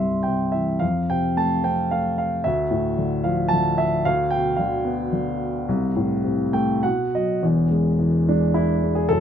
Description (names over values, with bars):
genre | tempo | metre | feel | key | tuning
classical, lyrical solo piano | 95-116 BPM | 3/4 | rubato | F major | A4 = 439 Hz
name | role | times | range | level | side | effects
dark baby grand piano | solo | 0.0-9.2 s | E1 to C6 | -19 LUFS | equal | none
room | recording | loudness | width
light reverb | close, detailed microphones | -19 LUFS | side -8 dB against mid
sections
0.0-7.4 A section; 7.4-9.2 B section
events
grand piano fill 6.2-7.4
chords
0.0 C; 0.8 F; 2.4 Dmadd9; 4.0 Dm6; 5.7 F/C; 6.8 B; 7.4 E